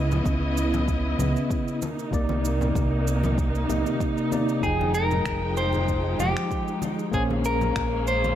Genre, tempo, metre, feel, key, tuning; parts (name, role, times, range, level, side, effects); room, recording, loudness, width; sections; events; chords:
sunset chillout; 96 BPM; 4/4; swing 54% on 16ths; F minor; A4 = 440 Hz
bright tine electric piano; accompaniment; 0.0-8.4 s; C3 to G5; -28 LUFS; equal; auto-pan, vintage 12-bit sampler grit, tape echo
warm studio string section; sustained chords; 0.0-8.4 s; C3 to G5; -29 LUFS; right 1 dB
overdriven fingered electric bass; bass; 0.0-8.4 s; F1 to Db2; -26 LUFS; equal
electronic cabasa and finger snaps; drums; 0.1-8.4 s; -39 LUFS; right 4 dB; studio reverb
congas; percussion; 0.1-8.4 s; -34 LUFS; left 2 dB
electronic kick drum; drums; 0.3-7.9 s; -29 LUFS; equal; studio reverb
clean electric guitar; melody; 4.6-8.4 s; G4 to C5; -26 LUFS; left 2 dB; ping-pong delay
light reverb; -22 LUFS; side -11 dB against mid
0.0-8.4 A section
0.0 Dbm9; 1.8 Cm9; 4.6 Fm9; 7.1 Bbm9